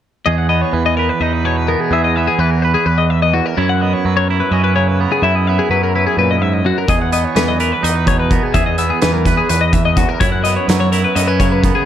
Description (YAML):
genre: math rock and midwest emo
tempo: 253 BPM (eighths)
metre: 7/8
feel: straight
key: E lydian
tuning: A4 = 440 Hz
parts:
  - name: twangy electric guitar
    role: accompaniment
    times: 0.3-11.9 s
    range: E2 to B4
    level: -18 LUFS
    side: right 9 dB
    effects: none
  - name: twelve-string electric guitar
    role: arpeggios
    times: 0.3-11.9 s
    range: F#4 to F#5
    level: -17 LUFS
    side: left 8 dB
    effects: spring reverb
  - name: growling picked electric bass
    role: bass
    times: 0.3-11.7 s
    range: E2 to F#2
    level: -17 LUFS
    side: equal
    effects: overdrive
  - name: loose indie drum kit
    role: drums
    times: 6.9-11.7 s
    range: hi-hat, kick drum, snare drum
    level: -17 LUFS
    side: equal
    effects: none
room: little or no reverb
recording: none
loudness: -12 LUFS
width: side -10 dB against mid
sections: 0.3-11.9 A section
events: none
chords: 0.3 Emaj7; 3.6 F#9sus4; 6.9 Emaj7; 10.2 F#7sus4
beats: | 0.26 0.50 0.73 0.97 1.21 1.44 1.68 | 1.92 2.15 2.39 2.63 2.86 3.10 3.34 | 3.57 3.81 4.05 4.28 4.52 4.76 4.99 | 5.23 5.47 5.70 5.94 6.18 6.41 6.65 | 6.89 7.12 7.36 7.60 7.83 8.07 8.31 | 8.55 8.78 9.02 9.26 9.49 9.73 9.97 | 10.21 10.44 10.68 10.92 11.16 11.39 11.63